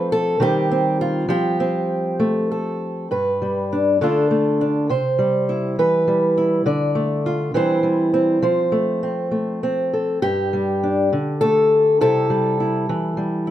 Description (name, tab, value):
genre	folk, solo fingerstyle acoustic guitar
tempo	68 BPM (dotted quarters)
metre	6/8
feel	rubato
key	G mixolydian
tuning	A4 = 440 Hz
part	fingerpicked old ladder-braced acoustic guitar	solo	0.0-13.5 s	G2 to D5	-17 LUFS	equal	none
room	moderate large studio reverb, RT60 1.1 s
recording	none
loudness	-17 LUFS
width	side -12 dB against mid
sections	0.0-3.1 A section; 3.1-10.2 B section; 10.2-13.5 C section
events	none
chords	0.4 Cm/Eb; 1.3 Fadd9; 3.1 G; 4.0 Dm; 4.9 C; 5.8 Em; 6.7 Dm; 7.5 C/E; 8.4 F; 10.2 G5; 11.1 D5; 12.0 C; 12.9 Em